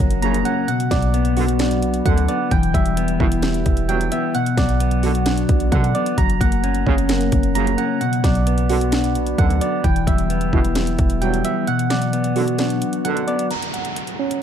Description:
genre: hip hop, trap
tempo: 131 BPM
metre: 4/4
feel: half-time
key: B harmonic minor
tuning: A4 = 439 Hz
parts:
  - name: mellow electric guitar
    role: accompaniment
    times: 0.0-13.5 s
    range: B2 to C#4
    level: -23 LUFS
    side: left 6 dB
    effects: wide subtle chorus, low-pass filter
  - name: glassy FM pad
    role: sustained chords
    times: 0.0-13.5 s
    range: C#3 to F#4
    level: -27 LUFS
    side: left 1 dB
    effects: ensemble chorus, built-in reverb
  - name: soft electric-piano-like synth keys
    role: arpeggios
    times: 0.0-14.4 s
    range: G3 to A#5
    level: -23 LUFS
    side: right 5 dB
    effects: chorus, low-pass filter, ping-pong delay
  - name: hard-hitting 808-style bass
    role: bass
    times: 0.0-11.4 s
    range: E1 to B2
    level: -21 LUFS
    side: equal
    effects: none
  - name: trap drum kit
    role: drums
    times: 0.0-14.4 s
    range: hi-hat, kick drum, snare drum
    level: -22 LUFS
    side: equal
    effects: none
  - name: impact and downlifter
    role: sound effects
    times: 0.2-0.7, 13.5-14.4 s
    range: none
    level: -32 LUFS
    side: equal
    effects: none
  - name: mellow brass ensemble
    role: stabs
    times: 0.2-13.4 s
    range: G1 to F#3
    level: -27 LUFS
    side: right 8 dB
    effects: none
room: digital ambience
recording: dark, warm production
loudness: -16 LUFS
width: side -9 dB against mid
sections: 0.0-13.5 A section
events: impact 0.0-0.7; kick muted 11.7-13.5; break 13.5-14.4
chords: 0.0 F#; 0.7 Bm; 2.5 Emadd9; 4.3 Bm; 6.2 F#; 8.0 Bm; 9.8 Emadd9; 11.7 Bm; 13.5 F#

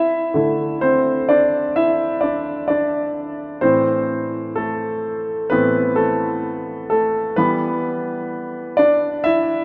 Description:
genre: pop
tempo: 64 BPM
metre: 4/4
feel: straight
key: unclear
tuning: A4 = 440 Hz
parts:
  - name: clear concert grand piano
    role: solo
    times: 0.0-9.6 s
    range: A2 to E5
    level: -20 LUFS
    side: equal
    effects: none
room: wet lush hall reverb, RT60 2.8 s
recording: rough home demo mix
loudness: -19 LUFS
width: mono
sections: 0.0-3.6 A section; 3.6-9.6 B section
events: grand piano solo 0.0-3.6, 3.6-9.6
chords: 0.0 Dsus2; 3.6 Amadd9; 7.4 Em

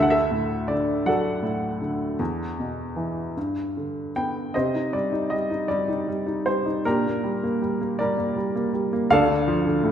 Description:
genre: classical, lyrical solo piano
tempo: 52 BPM (dotted quarters)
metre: 6/8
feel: rubato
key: C dorian from 4.5 s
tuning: A4 = 440 Hz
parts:
  - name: clear upright piano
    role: solo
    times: 0.0-9.9 s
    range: D2 to G5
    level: -22 LUFS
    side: equal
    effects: none
room: moderate concert hall reverb, RT60 1.8 s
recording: recorded in a church or concert hall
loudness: -22 LUFS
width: side -9 dB against mid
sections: 0.0-4.5 A section; 4.5-9.9 B section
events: none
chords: 0.0 D; 2.2 E5; 3.4 G; 4.5 Cm; 6.9 Gm/Bb; 9.1 Dm

